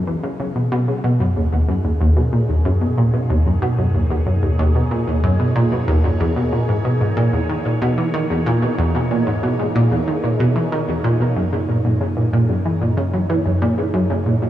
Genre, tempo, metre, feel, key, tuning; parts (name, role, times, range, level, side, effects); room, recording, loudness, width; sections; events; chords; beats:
ambient, sequencer-driven space music; 93 BPM; 4/4; straight; A4 = 444 Hz
phased analog pad; sustained chords; 0.0-14.5 s; F#2 to C#5; -24 LUFS; equal; phaser, chorus, shimmer reverb
analog pluck; riff; 0.0-14.5 s; D#2 to F#3; -16 LUFS; equal; chorus, tape echo
moderate lush hall reverb, RT60 2.8 s; small room ambience; -16 LUFS; side -12 dB against mid
0.0-14.5 A section
fade-in on analog synth pad 0.0-14.5
0.0 C#m; 1.0 Badd9; 6.2 E; 11.4 F#
0.40 | 1.04 1.69 2.33 2.98 | 3.62 4.27 4.91 5.56 | 6.20 6.85 7.49 8.14 | 8.78 9.43 10.07 10.72 | 11.36 12.01 12.65 13.30 | 13.94